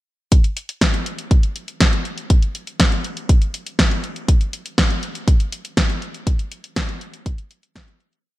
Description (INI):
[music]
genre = italo disco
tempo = 121 BPM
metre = 4/4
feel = straight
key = none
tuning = none
[part]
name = electronic kick drum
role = drums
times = 0.3-7.9 s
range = none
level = -16 LUFS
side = equal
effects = none
[part]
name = house drum kit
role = drums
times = 0.3-8.2 s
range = hi-hat, snare drum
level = -21 LUFS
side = equal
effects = gated reverb
[sound]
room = little or no reverb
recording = none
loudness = -17 LUFS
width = side -17 dB against mid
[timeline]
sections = 0.3-8.3 verse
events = fade-out 5.6-8.3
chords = none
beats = | 0.32 0.81 1.31 1.81 | 2.30 2.80 3.29 3.79 | 4.29 4.78 5.28 5.77 | 6.27 6.76 7.26 7.76